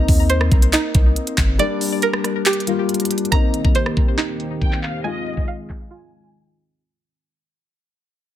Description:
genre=hip hop, trap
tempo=139 BPM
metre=4/4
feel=half-time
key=C minor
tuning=A4 = 440 Hz
part: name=dark concert grand piano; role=accompaniment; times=0.0-6.8 s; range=G3 to F4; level=-23 LUFS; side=left 4 dB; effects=none
part: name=string-like resonator pluck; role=arpeggios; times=0.0-6.8 s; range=Eb4 to Bb5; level=-23 LUFS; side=right 4 dB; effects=chorus, ping-pong delay
part: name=warm 808-style bass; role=bass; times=0.0-1.6 s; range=G1 to Eb2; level=-18 LUFS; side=equal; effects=none
part: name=trap drum kit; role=drums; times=0.1-5.8 s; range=handclaps, hi-hat, kick drum, rim click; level=-18 LUFS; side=equal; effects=none
part: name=dark analog pad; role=sustained chords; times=3.3-6.8 s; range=Eb3 to G4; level=-29 LUFS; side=right 2 dB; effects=chorus
part: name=warm studio violin section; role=second line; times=4.6-6.7 s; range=Eb5 to Ab5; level=-31 LUFS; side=left 2 dB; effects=ping-pong delay
room=little or no reverb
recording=dense, heavily limited modern master, low-pass filter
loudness=-16 LUFS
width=side -12 dB against mid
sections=0.0-3.3 A section; 3.3-6.8 B section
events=break 1.6-3.3, 5.9-6.8; fade-out 3.3-6.8; filter sweep 3.3-6.8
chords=0.0 Cm7; 1.6 Gm; 3.3 Cm7; 5.0 Fm7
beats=0.30 0.73 1.16 | 1.59 2.03 2.46 2.89 | 3.32 3.75 4.18 4.62 | 5.05 5.48 5.91 6.34

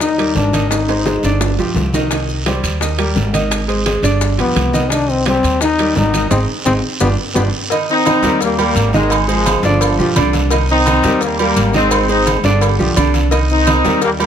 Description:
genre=latin, salsa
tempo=171 BPM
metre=4/4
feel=straight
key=C minor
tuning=A4 = 438 Hz
part: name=warm trombone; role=melody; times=0.0-1.4, 4.4-7.4 s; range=B3 to Eb4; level=-17 LUFS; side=left 3 dB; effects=none
part: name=clear grand piano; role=accompaniment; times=0.0-14.3 s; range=D3 to Eb5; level=-18 LUFS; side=right 2 dB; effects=none
part: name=upright bass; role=bass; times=0.0-14.3 s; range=G1 to Eb2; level=-18 LUFS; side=right 1 dB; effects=none
part: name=bongos and cowbell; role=percussion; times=0.0-14.2 s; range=none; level=-26 LUFS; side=left 7 dB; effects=none
part: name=congas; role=percussion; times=0.0-14.3 s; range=none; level=-25 LUFS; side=left 1 dB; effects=none
part: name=guiro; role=percussion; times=0.0-14.3 s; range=none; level=-28 LUFS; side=right 5 dB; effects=none
part: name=maracas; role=percussion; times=0.0-14.3 s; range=none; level=-29 LUFS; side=left 5 dB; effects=none
part: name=timbales and agogo bells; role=percussion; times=0.2-14.3 s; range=none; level=-24 LUFS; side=right 9 dB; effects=none
part: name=bright trombone section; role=melody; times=7.9-14.3 s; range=D3 to Eb4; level=-16 LUFS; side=left 1 dB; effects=none
room=moderate large studio reverb, RT60 1.4 s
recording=close, detailed microphones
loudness=-12 LUFS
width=side -9 dB against mid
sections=0.0-7.7 A section; 7.7-14.3 B section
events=drum fill 0.7-2.1, 6.7-7.7; band accent 6.3-7.7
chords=0.0 Eb; 0.7 Ab; 1.4 G7; 2.1 Cm; 2.8 Eb; 3.5 Ab; 4.2 G7; 4.9 Cm; 5.6 Eb; 6.3 Ab; 7.0 G7(no3); 7.7 Cm; 8.4 Eb; 9.1 Ab; 9.8 G7; 10.5 Cm; 11.2 Eb; 11.9 Ab; 12.6 G7; 13.3 Cm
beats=0.01 0.36 | 0.71 1.06 1.41 1.76 | 2.11 2.46 2.81 3.16 | 3.51 3.86 4.21 4.56 | 4.91 5.26 5.61 5.96 | 6.31 6.66 7.01 7.36 | 7.71 8.06 8.41 8.76 | 9.11 9.46 9.81 10.16 | 10.51 10.86 11.21 11.56 | 11.91 12.27 12.62 12.97 | 13.32 13.67 14.02

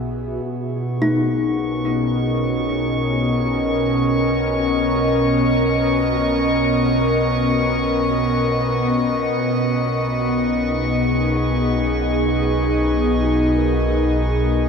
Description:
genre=ambient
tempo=free time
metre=none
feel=none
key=B major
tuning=A4 = 439 Hz
part: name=airy breathy pad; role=sustained chords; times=0.0-14.7 s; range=B2 to E5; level=-18 LUFS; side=equal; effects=chorus
part: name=kalimba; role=arpeggios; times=0.0-3.4, 13.2-14.7 s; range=C#4 to B4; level=-25 LUFS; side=left 3 dB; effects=tape echo
part: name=warm sub bass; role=bass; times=0.0-14.7 s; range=B1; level=-27 LUFS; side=equal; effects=none
part: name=drifting glass-harmonics texture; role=texture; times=1.0-14.7 s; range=C#6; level=-27 LUFS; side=left 1 dB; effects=chorus, built-in reverb
room=wet lush hall reverb, RT60 2.7 s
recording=dark, warm production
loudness=-17 LUFS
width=side -6 dB against mid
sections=0.5-14.7 A section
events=fade-in on sub bass 0.5-14.7; fade-out on kalimba 0.5-14.7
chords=0.5 Bmaj9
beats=free time

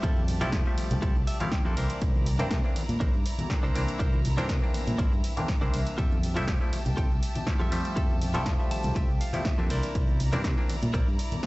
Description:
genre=filtered disco house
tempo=121 BPM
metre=4/4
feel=straight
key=F major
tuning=A4 = 440 Hz
part: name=clav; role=accompaniment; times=0.0-11.5 s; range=E3 to E5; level=-35 LUFS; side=equal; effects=phaser, sidechain pumping
part: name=rich chamber violin section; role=sustained chords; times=0.0-11.5 s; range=E4 to Bb5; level=-40 LUFS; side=equal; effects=vintage 12-bit sampler grit, sidechain pumping
part: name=direct-recorded clean electric guitar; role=riff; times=0.0-11.2 s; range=D4 to A5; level=-37 LUFS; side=equal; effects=sidechain pumping
part: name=fingered electric bass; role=bass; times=0.0-11.2 s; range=F1 to C3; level=-30 LUFS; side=equal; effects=sidechain pumping
part: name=electronic kick drum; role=drums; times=0.0-11.5 s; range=none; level=-27 LUFS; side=equal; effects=none
part: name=punchy analog drum machine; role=drums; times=0.0-11.5 s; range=hi-hat, ride cymbal, snare drum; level=-38 LUFS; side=equal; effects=none
part: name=tube shaker and congas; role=percussion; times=0.0-11.4 s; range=none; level=-37 LUFS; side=left 1 dB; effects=sidechain pumping on perc
room=little or no reverb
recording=played on a big sound system in a bare room, large studio reverb, nothing above 8.0 kHz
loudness=-24 LUFS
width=side -20 dB against mid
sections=0.0-11.5 A section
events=clean electric guitar fill 1.0-2.0, 8.5-10.0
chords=0.0 Fmaj9; 1.8 C9; 6.0 Fmaj9; 9.7 C9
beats=| 0.03 0.53 1.02 1.52 | 2.02 2.51 3.01 3.50 | 4.00 4.50 4.99 5.49 | 5.98 6.48 6.98 7.47 | 7.97 8.46 8.96 9.46 | 9.95 10.45 10.94 11.44

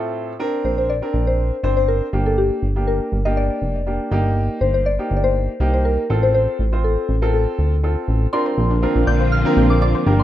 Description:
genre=pop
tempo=121 BPM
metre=4/4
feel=straight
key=Bb major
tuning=A4 = 439 Hz
part: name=clear baby grand piano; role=accompaniment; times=0.0-10.2 s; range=A2 to C5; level=-23 LUFS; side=right 1 dB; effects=none
part: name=soft synth bell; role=melody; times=0.6-10.2 s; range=G4 to G6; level=-23 LUFS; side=left 3 dB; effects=chorus, ping-pong delay
part: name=chorused synth bass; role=bass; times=0.6-10.2 s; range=F1 to D2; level=-19 LUFS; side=equal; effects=none
part: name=soft string machine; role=sustained chords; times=8.3-10.2 s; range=D3 to F4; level=-21 LUFS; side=equal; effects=ensemble chorus
part: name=soft round pluck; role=arpeggios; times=8.3-10.2 s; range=Bb3 to D5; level=-26 LUFS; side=left 3 dB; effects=chorus, ping-pong delay
room=light reverb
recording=rough home demo mix, nothing above 10.9 kHz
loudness=-16 LUFS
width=side -12 dB against mid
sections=0.0-8.3 A section; 8.3-10.2 B section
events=none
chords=0.4 Bbadd9; 2.1 Gm; 4.1 Eb/G; 6.1 F/A; 8.3 Bbadd9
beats=| 0.40 0.89 1.39 1.88 | 2.38 2.88 3.37 3.87 | 4.36 4.86 5.35 5.85 | 6.35 6.84 7.34 7.83 | 8.33 8.82 9.32 9.82

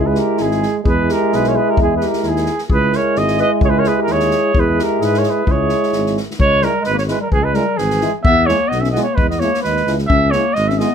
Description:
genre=balkan folk, Balkan brass band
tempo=130 BPM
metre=2/4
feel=swing 54% on 16ths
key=C# dorian sharp4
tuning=A4 = 440 Hz
part: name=mellow trumpet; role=melody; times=0.0-10.9 s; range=G#4 to E5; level=-18 LUFS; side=right 2 dB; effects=none
part: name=mellow clarinet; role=second line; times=0.0-10.9 s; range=E3 to B4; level=-22 LUFS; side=left 4 dB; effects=none
part: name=clear trombone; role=accompaniment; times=0.0-10.9 s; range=G#3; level=-22 LUFS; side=right 6 dB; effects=none
part: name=warm euphonium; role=accompaniment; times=0.0-10.9 s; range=E4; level=-22 LUFS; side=left 3 dB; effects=none
part: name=mellow tuba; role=bass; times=0.0-10.8 s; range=G#1 to G#2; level=-20 LUFS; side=equal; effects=none
part: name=unplugged drum kit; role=percussion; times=0.1-10.9 s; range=kick drum, snare drum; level=-21 LUFS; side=left 1 dB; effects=none
room=light reverb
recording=none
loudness=-13 LUFS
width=side -7 dB against mid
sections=0.0-6.4 A section; 6.4-10.9 A section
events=none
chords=0.0 C#m; 0.9 E; 2.7 C#m; 4.6 E; 5.5 C#m; 8.3 E; 10.1 C#m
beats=0.40 | 0.86 1.32 | 1.78 2.24 | 2.70 3.17 | 3.63 4.09 | 4.55 5.01 | 5.48 5.94 | 6.40 6.87 | 7.33 7.79 | 8.26 8.72 | 9.18 9.65 | 10.11 10.58

